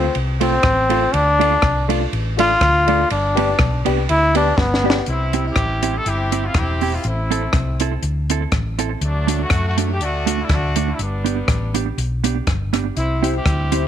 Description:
ska; 122 BPM; 4/4; swing 54% on 8ths; C major; A4 = 438 Hz
brilliant trombone; melody; 0.0-5.1 s; B3 to F4; -17 LUFS; left 1 dB
mellow electric guitar; accompaniment; 0.0-13.8 s; A3 to A4; -24 LUFS; right 14 dB; slapback echo
dark upright piano; stabs; 0.0-5.0, 13.2-13.9 s; E4 to D5; -25 LUFS; left 14 dB
hollow-body short-scale fingered electric bass; bass; 0.0-13.9 s; E1 to F#2; -21 LUFS; equal
compact cocktail drum kit; drums; 0.1-13.8 s; hi-hat, kick drum, ride cymbal, rim click, snare drum; -22 LUFS; left 1 dB
warm horn section; melody; 5.1-13.9 s; F#3 to A4; -24 LUFS; left 1 dB; tube saturation
light reverb, studio reverb; 1960s-style stereo with parts hard left and right; -16 LUFS; side -10 dB against mid
0.0-5.1 A section; 5.1-13.9 B section
trombone solo 0.0-5.1; drum fill 4.6-5.1
0.0 F; 3.1 G; 5.1 C; 7.0 Am; 9.0 D; 11.0 G; 13.0 C

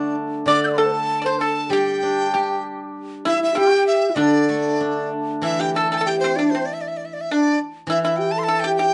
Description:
chinese traditional, Chinese chamber ensemble; 97 BPM; 2/4; rubato; D shang mode; A4 = 442 Hz
breathy mellow dizi; melody; 0.0-8.9 s; C5 to G6; -25 LUFS; equal
breathy bright low xiao; second line; 0.0-8.9 s; D4 to D5; -25 LUFS; equal
pipa; second line; 0.0-8.9 s; C4 to D5; -25 LUFS; equal
steel pan; second line; 0.0-5.1 s; D4 to D5; -28 LUFS; equal
steel-string zither; accompaniment; 0.0-8.9 s; D3 to G4; -28 LUFS; equal
wet studio reverb, RT60 0.6 s; heard from further back in the room, nothing above 10.4 kHz; -20 LUFS; mono
0.0-5.4 A section; 5.4-8.9 B section

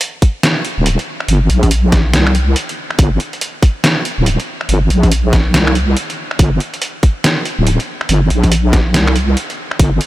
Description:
deep dubstep; 141 BPM; 4/4; swing 62% on 16ths, half-time; G minor; A4 = 439 Hz
trip hop sampler-style drum kit; drums; 0.0-10.1 s; finger snaps, hi-hat, snare drum; -17 LUFS; equal; overdrive
electronic kick drum; drums; 0.2-9.9 s; -11 LUFS; equal
wobble bass; bass; 0.8-10.0 s; D1 to C2; -12 LUFS; equal; chorus
digital ambience; -12 LUFS; side -16 dB against mid
0.0-10.1 A section

